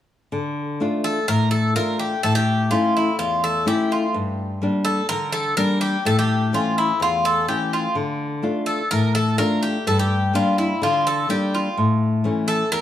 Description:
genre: greek folk, Greek bouzouki band.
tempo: 126 BPM.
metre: 4/4.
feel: straight.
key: D harmonic minor.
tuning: A4 = 438 Hz.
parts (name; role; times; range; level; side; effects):
nylon-string guitar; accompaniment; 0.3-12.8 s; E2 to F4; -21 LUFS; left 2 dB; none.
Greek bouzouki; melody; 1.0-12.8 s; E4 to Bb4; -21 LUFS; equal; none.
room: moderate plate reverb, RT60 2.5 s.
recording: studio ambience.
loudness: -18 LUFS.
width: side -11 dB against mid.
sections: 0.3-12.8 A section.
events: none.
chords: 0.3 Dm; 2.2 A; 4.1 Gm; 6.1 A; 8.0 Dm; 9.9 Gm; 11.8 A.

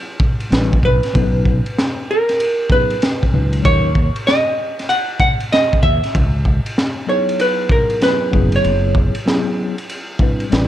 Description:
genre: hip hop, jazz-hop.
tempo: 96 BPM.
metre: 4/4.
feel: swing 63% on 16ths.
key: unclear.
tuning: A4 = 441 Hz.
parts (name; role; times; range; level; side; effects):
crunchy breakbeat drum kit; drums; 0.2-10.7 s; hi-hat, kick drum, ride cymbal, snare drum; -18 LUFS; equal; none.
mellow tine electric piano; accompaniment; 0.5-10.7 s; A#2 to D5; -22 LUFS; left 2 dB; medium stereo tremolo.
mellow fretless electric bass; bass; 0.5-10.7 s; F#1 to D#2; -17 LUFS; equal; none.
vintage hollow-body jazz guitar; melody; 0.9-10.4 s; A#4 to F#5; -18 LUFS; right 1 dB; none.
room: small room reverb.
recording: dark, warm production.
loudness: -14 LUFS.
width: side -12 dB against mid.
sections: 0.0-10.7 A section.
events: tine electric piano fill 10.2-10.7.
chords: 0.0 N.C.; 0.5 Am11; 1.1 Bmaj7; 3.6 D#m7; 6.1 C#m11; 8.3 F#9sus4.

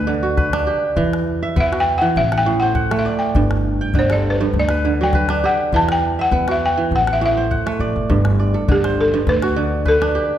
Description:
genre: west african traditional, West African string and xylophone music.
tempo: 101 BPM.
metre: 4/4.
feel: swing 53% on 16ths.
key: G major.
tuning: A4 = 445 Hz.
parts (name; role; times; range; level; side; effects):
kora; arpeggios; 0.0-10.4 s; G2 to G5; -19 LUFS; right 2 dB; none.
upright bass; bass; 0.0-10.2 s; G1 to E2; -22 LUFS; equal; none.
calabash; percussion; 0.4-10.1 s; none; -24 LUFS; left 2 dB; none.
balafon; melody; 1.6-10.4 s; G4 to A5; -19 LUFS; left 1 dB; none.
room: wet concert hall reverb, RT60 2.0 s.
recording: recorded in a church or concert hall.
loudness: -15 LUFS.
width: side -11 dB against mid.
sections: 0.0-8.1 A section; 8.1-10.4 B section.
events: balafon solo 0.0-8.1.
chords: 0.0 D; 1.0 Em; 2.2 Am; 3.3 G5; 4.5 D; 5.7 Em; 6.9 Am; 8.1 G5; 9.3 D.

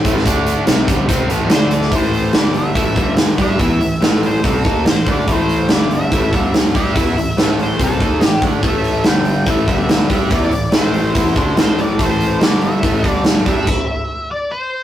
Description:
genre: classic rock.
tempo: 143 BPM.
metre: 4/4.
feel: straight.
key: A minor.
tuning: A4 = 436 Hz.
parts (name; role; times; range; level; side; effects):
bright tonewheel organ; sustained chords; 0.0-1.9 s; A3 to D5; -29 LUFS; equal; none.
overdriven semi-hollow guitar; riff; 0.0-13.7 s; G2 to G4; -20 LUFS; left 4 dB; none.
overdriven semi-hollow guitar; riff; 0.0-13.7 s; G2 to G4; -21 LUFS; right 4 dB; none.
fuzz fingered electric bass; bass; 0.0-13.7 s; G1 to G2; -24 LUFS; equal; overdrive.
big rock drum kit; drums; 0.0-13.8 s; crash cymbal, hi-hat, kick drum, snare drum; -16 LUFS; equal; none.
octave-fuzz lead guitar; melody; 1.5-14.8 s; A4 to G5; -23 LUFS; left 1 dB; wah, distortion.
room: moderate studio reverb, RT60 0.6 s.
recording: rough rehearsal-room recording, warm saturation.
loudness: -13 LUFS.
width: side -12 dB against mid.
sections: 0.0-1.9 A section; 1.9-14.8 B section.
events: stop 13.7-14.8.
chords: 0.2 D5; 0.7 Am; 1.5 D5; 1.9 Am; 2.3 G5; 2.8 A5; 3.0 G5; 3.4 Am; 5.7 G5; 6.1 A5; 6.3 G5; 6.7 Am; 9.1 G5; 9.5 A5; 9.7 G5; 10.1 Am; 12.4 G5; 12.8 A5; 13.0 G5.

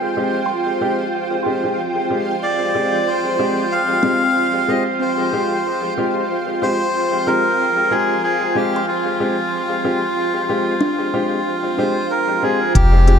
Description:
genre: ambient dub.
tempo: 93 BPM.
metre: 4/4.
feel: swing 55% on 16ths.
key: F dorian.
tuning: A4 = 440 Hz.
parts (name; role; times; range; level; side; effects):
granular cloud pad; sustained chords; 0.0-13.2 s; F4 to G5; -24 LUFS; right 2 dB; built-in reverb.
bubbling stepped-filter texture; texture; 0.0-12.8 s; G5; -28 LUFS; right 4 dB; chorus, built-in reverb.
warm upright piano; stabs; 0.2-13.2 s; Ab3 to G4; -22 LUFS; left 1 dB; low-pass filter, dub echo.
kalimba; arpeggios; 0.5-13.1 s; C4 to C6; -25 LUFS; left 1 dB; low-pass filter, analog delay.
melodica; melody; 2.4-13.2 s; F4 to F5; -19 LUFS; equal; dub echo.
soft dub sub bass; bass; 12.8-13.2 s; F1; -10 LUFS; equal; tube saturation.
electronic hi-hat; drums; 12.8-13.2 s; none; -27 LUFS; left 3 dB; none.
electronic kick drum; drums; 12.8-12.9 s; none; -17 LUFS; equal; none.
room: moderate echo chamber reverb, RT60 2.0 s, small room ambience.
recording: echo-heavy mix.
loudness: -16 LUFS.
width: side -7 dB against mid.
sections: 0.0-12.8 A section.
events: none.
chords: 0.0 Fmadd9.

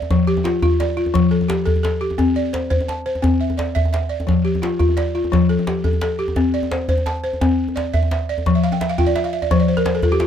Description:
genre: west african traditional, West African string and xylophone music.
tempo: 115 BPM (dotted quarters).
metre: 12/8.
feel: straight.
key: unclear.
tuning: A4 = 439 Hz.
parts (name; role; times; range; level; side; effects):
balafon; arpeggios; 0.0-10.3 s; F3 to A5; -18 LUFS; left 2 dB; none.
djembe; percussion; 0.0-10.3 s; none; -20 LUFS; equal; none.
room: little or no reverb.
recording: close, detailed microphones.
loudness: -16 LUFS.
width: side -9 dB against mid.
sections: 0.0-10.3 A section.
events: balafon fill 8.5-10.3.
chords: 0.1 F; 2.2 C; 4.3 F; 6.4 C; 8.5 F.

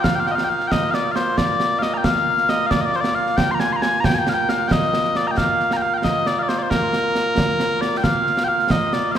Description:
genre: scottish traditional, Scottish pipe music.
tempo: 90 BPM (dotted quarters).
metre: 6/8.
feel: straight.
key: Bb major.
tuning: A4 = 440 Hz.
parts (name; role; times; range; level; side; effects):
mellow small bagpipes; melody; 0.0-9.2 s; Bb2 to C6; -18 LUFS; equal; none.
concert snare drum and concert bass drum; drums; 0.0-9.2 s; none; -22 LUFS; right 2 dB; none.
room: wet concert hall reverb, RT60 1.9 s.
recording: recorded in a church or concert hall.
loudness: -17 LUFS.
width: side -9 dB against mid.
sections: 0.0-8.0 A section; 8.0-9.2 A section.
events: none.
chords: none.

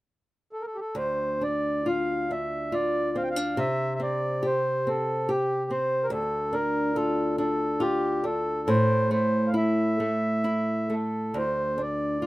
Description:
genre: celtic folk, Celtic slow air.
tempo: 69 BPM.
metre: 3/4.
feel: uneven beats, rubato.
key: D minor.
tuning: A4 = 440 Hz.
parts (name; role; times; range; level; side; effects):
mellow accordion; melody; 0.5-12.3 s; G4 to G5; -27 LUFS; right 1 dB; none.
flamenco guitar; accompaniment; 0.9-12.3 s; D2 to G4; -27 LUFS; left 1 dB; none.
room: light reverb.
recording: rough home demo mix.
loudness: -24 LUFS.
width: side -18 dB against mid.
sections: 1.0-12.3 A section.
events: none.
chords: 0.0 N.C.; 1.0 Dm; 3.6 C5; 6.1 Dm; 8.7 A5; 11.4 D5.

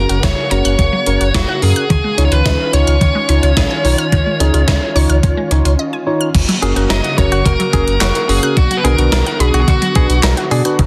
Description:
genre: synth-pop.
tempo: 108 BPM.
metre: 4/4.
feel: straight.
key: F# major.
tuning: A4 = 444 Hz.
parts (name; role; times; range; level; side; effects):
bluesy overdriven lead guitar; melody; 0.0-10.2 s; F#4 to D#5; -21 LUFS; equal; distortion.
tine electric piano; accompaniment; 0.0-10.8 s; C#4 to D5; -23 LUFS; equal; none.
lush unison pad; sustained chords; 0.0-10.9 s; C#3 to F#4; -25 LUFS; equal; chorus, phaser.
resonant blip pluck; arpeggios; 0.0-10.9 s; C#3 to F#6; -25 LUFS; equal; phaser.
sub bass with octave; bass; 0.0-10.9 s; E#1 to B2; -17 LUFS; equal; none.
gated 80s digital drum machine; drums; 0.1-10.9 s; crash cymbal, handclaps, hi-hat, kick drum, snare drum; -20 LUFS; equal; gated reverb, gated reverb snare.
direct-recorded clean electric guitar; second line; 6.6-10.6 s; F#4 to A#4; -26 LUFS; equal; tape echo.
room: light reverb.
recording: dense, heavily limited modern master.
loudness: -14 LUFS.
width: mono.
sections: 0.0-6.3 A section; 6.3-10.9 B section.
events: break 5.8-6.3.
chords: 0.0 F#; 1.9 C#add9; 6.3 F#; 8.6 Bm.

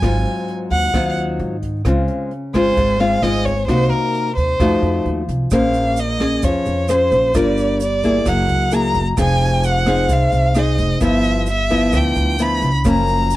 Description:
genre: bossa nova.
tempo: 131 BPM.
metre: 4/4.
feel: straight.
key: Db major.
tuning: A4 = 435 Hz.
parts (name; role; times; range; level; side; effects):
rich violin; melody; 0.0-13.4 s; Bb4 to B5; -20 LUFS; equal; none.
nylon-string guitar; accompaniment; 0.0-13.4 s; Gb2 to C5; -19 LUFS; left 1 dB; none.
upright bass; bass; 0.0-13.4 s; F1 to Ab2; -20 LUFS; right 1 dB; none.
jazz brush drum kit; drums; 0.0-13.4 s; hi-hat, kick drum, rim click; -26 LUFS; equal; none.
tube shaker; percussion; 5.5-13.4 s; none; -37 LUFS; right 12 dB; none.
room: studio reverb.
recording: dry, close 1970s-style studio recording.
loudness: -15 LUFS.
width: side -16 dB against mid.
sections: 0.0-5.5 A section; 5.5-13.4 B section.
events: none.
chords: 0.0 Ab6; 1.9 Dbmaj7; 3.7 Cm7b5; 4.6 F7b9; 5.5 Bbm9; 7.3 Gm7; 8.3 Gb9; 9.2 Fm7; 11.0 G6; 12.9 Gbmaj7.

